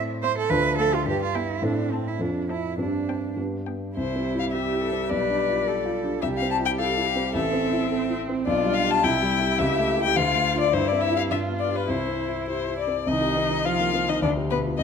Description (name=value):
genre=quick classical-period movement for piano quartet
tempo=106 BPM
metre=2/4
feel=straight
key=C major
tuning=A4 = 440 Hz
part: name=warm cello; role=second line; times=0.0-14.8 s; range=B2 to C5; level=-29 LUFS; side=right 7 dB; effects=none
part: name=dark grand piano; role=accompaniment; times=0.0-14.8 s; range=A1 to B4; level=-26 LUFS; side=left 1 dB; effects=none
part: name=warm violin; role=melody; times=0.2-14.8 s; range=B4 to A5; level=-25 LUFS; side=left 10 dB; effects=none
part: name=warm viola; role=accompaniment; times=0.2-14.8 s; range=G3 to G4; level=-30 LUFS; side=right 3 dB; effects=none
room=moderate scoring stage reverb, RT60 1.8 s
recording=close, detailed microphones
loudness=-22 LUFS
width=side -6 dB against mid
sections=0.0-4.0 A section; 4.0-13.1 B section; 13.1-14.8 C section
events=none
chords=0.0 Am; 0.5 Dm; 1.1 G; 1.6 Am; 2.2 F; 2.8 Gsus4; 3.4 G; 4.0 C; 5.1 G7/B; 6.2 C; 7.3 Am; 8.5 G7/B; 9.0 C; 9.6 A7/C#; 10.2 Dm; 10.7 C/G; 11.3 G7; 11.9 C; 13.1 Cm; 14.2 G7/D